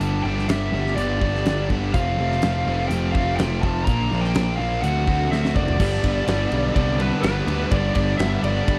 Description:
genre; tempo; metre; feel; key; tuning
classic rock; 124 BPM; 4/4; straight; unclear; A4 = 441 Hz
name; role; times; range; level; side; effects
lead guitar through a small cranked amp; melody; 0.0-8.8 s; B4 to Bb5; -29 LUFS; equal; overdrive, slapback echo
crunchy overdriven guitar; riff; 0.0-8.8 s; F2 to G4; -29 LUFS; equal; none
overdriven electric guitar; riff; 0.0-8.8 s; F2 to F#4; -32 LUFS; equal; none
fuzz picked electric bass; bass; 0.0-8.8 s; F1 to D2; -26 LUFS; equal; overdrive
big rock drum kit; drums; 0.0-8.8 s; crash cymbal, hi-hat, kick drum, ride cymbal, snare drum, toms; -28 LUFS; equal; none
tight distorted guitar; riff; 5.8-8.8 s; G2 to G3; -33 LUFS; equal; distortion
room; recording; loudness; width
little or no reverb; dry, close 1970s-style studio recording; -22 LUFS; mono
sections
0.0-5.8 A section; 5.8-8.8 B section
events
drum fill 5.3-5.8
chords
0.0 G; 1.9 F; 3.9 Bb; 4.8 D7; 5.8 G

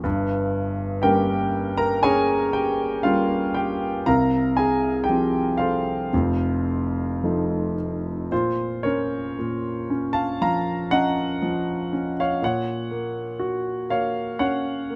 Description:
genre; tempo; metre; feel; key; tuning
classical, lyrical solo piano; 53-62 BPM; 4/4; rubato; Bb minor from 8.3 s; A4 = 440 Hz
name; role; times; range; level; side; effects
clear grand piano; solo; 0.0-15.0 s; F1 to Bb5; -24 LUFS; equal; none
room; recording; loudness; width
light reverb; close, detailed microphones; -24 LUFS; mono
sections
0.0-8.3 A section; 8.3-15.0 B section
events
none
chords
0.0 Gdim; 4.1 Fm/C; 6.1 F7; 8.3 Bbm; 12.4 Gb/Bb

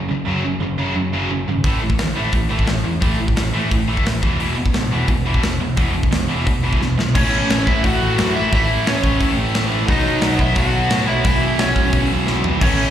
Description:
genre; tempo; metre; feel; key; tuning
punk rock; 175 BPM; 4/4; straight; A major from 7.2 s; A4 = 440 Hz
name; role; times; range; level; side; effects
tight distorted guitar; riff; 0.0-12.9 s; E2 to B3; -24 LUFS; left 11 dB; distortion, slapback echo
tight distorted guitar; riff; 0.0-12.9 s; E2 to B3; -23 LUFS; right 8 dB; distortion
picked electric bass; bass; 0.0-12.9 s; E1 to A2; -23 LUFS; equal; none
big rock drum kit; drums; 1.6-12.7 s; crash cymbal, hi-hat, kick drum, snare drum, toms; -20 LUFS; equal; none
thick fuzz guitar; riff; 7.1-12.9 s; E2 to B3; -25 LUFS; equal; distortion, slapback echo
cranked stack guitar; melody; 7.2-12.9 s; C#4 to F#5; -21 LUFS; equal; overdrive, tape echo
room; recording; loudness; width
studio reverb; live gig heard through the venue's PA, recital hall reverb; -16 LUFS; side -10 dB against mid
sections
0.0-7.2 A section; 7.2-12.9 B section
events
drum fill 6.8-7.2, 12.3-12.6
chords
0.0 F#5; 1.6 A5; 4.2 E5; 7.2 A; 9.9 B; 11.2 E5/B

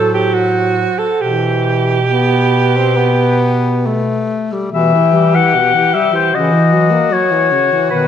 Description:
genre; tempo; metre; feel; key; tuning
classical, lyrical piece for single-reed quartet; 67-77 BPM; 4/4; rubato; E minor; A4 = 438 Hz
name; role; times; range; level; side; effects
warm clarinet; melody; 0.0-8.1 s; B4 to F#5; -16 LUFS; left 8 dB; none
clear alto saxophone; second line; 0.0-8.1 s; F#4 to A4; -17 LUFS; right 6 dB; none
warm tenor saxophone; accompaniment; 0.0-8.1 s; B2 to C4; -18 LUFS; left 2 dB; none
warm bass clarinet; bass; 0.0-8.1 s; A2 to E3; -17 LUFS; equal; none
room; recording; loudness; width
wet scoring stage reverb, RT60 1.5 s; none; -11 LUFS; side -8 dB against mid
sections
0.0-4.7 A section; 4.7-8.1 B section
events
none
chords
0.0 F#dim/A; 1.2 Em/B; 3.0 Gadd9/B; 4.7 Em/B; 6.3 F#7/C#

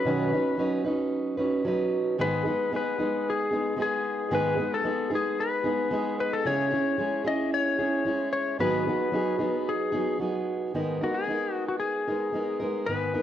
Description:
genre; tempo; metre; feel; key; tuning
pop; 112 BPM; 4/4; straight; G# minor; A4 = 440 Hz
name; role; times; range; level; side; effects
clean lap steel guitar; melody; 0.0-13.2 s; F#4 to D#5; -28 LUFS; left 4 dB; cassette tape, plate reverb
fingerpicked plugged-in steel-string acoustic guitar; accompaniment; 0.0-13.2 s; G#2 to B4; -27 LUFS; right 2 dB; cassette tape, plate reverb
room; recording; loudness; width
wet studio ambience, RT60 0.5 s; home recording on cassette, lossy compression artefacts; -25 LUFS; side -11 dB against mid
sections
0.0-10.7 A section; 10.7-13.2 B section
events
none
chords
0.0 Badd9; 2.2 G#m; 6.5 C#m; 8.6 G#m7; 10.7 G#madd9

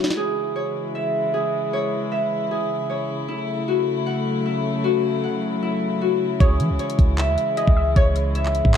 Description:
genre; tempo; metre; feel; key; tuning
hip hop, trap; 154 BPM; 4/4; half-time; C# minor; A4 = 440 Hz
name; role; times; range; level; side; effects
warbly dusty pluck; second line; 0.0-0.1, 6.4-8.8 s; C#5 to E5; -29 LUFS; left 1 dB; chorus, tape echo
warm chamber string section; sustained chords; 0.0-8.8 s; C#3 to E4; -26 LUFS; left 2 dB; none
Celtic harp; arpeggios; 0.0-8.8 s; E4 to F#5; -24 LUFS; left 1 dB; tape echo
trap drum kit; drums; 0.0-0.2, 6.4-8.8 s; handclaps, hi-hat, kick drum, snare drum; -19 LUFS; equal; none
clean 808-style bass; bass; 6.4-8.8 s; C#2 to E3; -21 LUFS; equal; none
room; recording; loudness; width
moderate spring reverb, RT60 1.9 s; dark, warm production; -19 LUFS; side -8 dB against mid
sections
0.2-8.8 A section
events
drum fill 0.0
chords
0.2 C#m; 3.3 F#m7; 6.4 C#m

